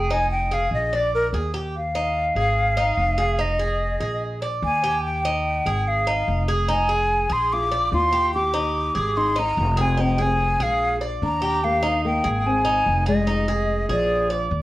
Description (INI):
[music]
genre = latin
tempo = 146 BPM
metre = 4/4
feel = straight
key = unclear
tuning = A4 = 438 Hz
[part]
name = breathy hollow jazz flute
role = melody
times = 0.0-14.5 s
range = Bb4 to D6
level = -22 LUFS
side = left 1 dB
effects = slapback echo
[part]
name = Cuban tres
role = arpeggios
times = 0.0-14.6 s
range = Eb4 to D5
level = -26 LUFS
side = right 2 dB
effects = none
[part]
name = upright bass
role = bass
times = 0.0-14.6 s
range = F1 to Eb2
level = -25 LUFS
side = equal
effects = none
[part]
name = flamenco guitar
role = second line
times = 7.5-14.5 s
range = F3 to G4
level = -28 LUFS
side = left 3 dB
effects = none
[sound]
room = moderate studio reverb, RT60 0.6 s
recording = worn, warbling old tape, cassette tape, warbly pitch drift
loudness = -19 LUFS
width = side -16 dB against mid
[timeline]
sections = 0.0-1.8 A section; 1.8-14.6 B section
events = flute solo 0.0-1.8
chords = 0.1 Fm7; 0.9 Bb7; 1.8 Fm7; 2.6 Ab5; 3.4 Fm7; 4.2 Bb7; 5.0 Eb; 5.9 Ab5; 6.7 Fm7; 7.5 Bb7; 8.3 Eb; 9.2 Ab5; 10.0 Fm7; 10.8 Bb7; 11.6 Eb; 12.4 Ab6; 13.3 Fm7; 14.1 Bb7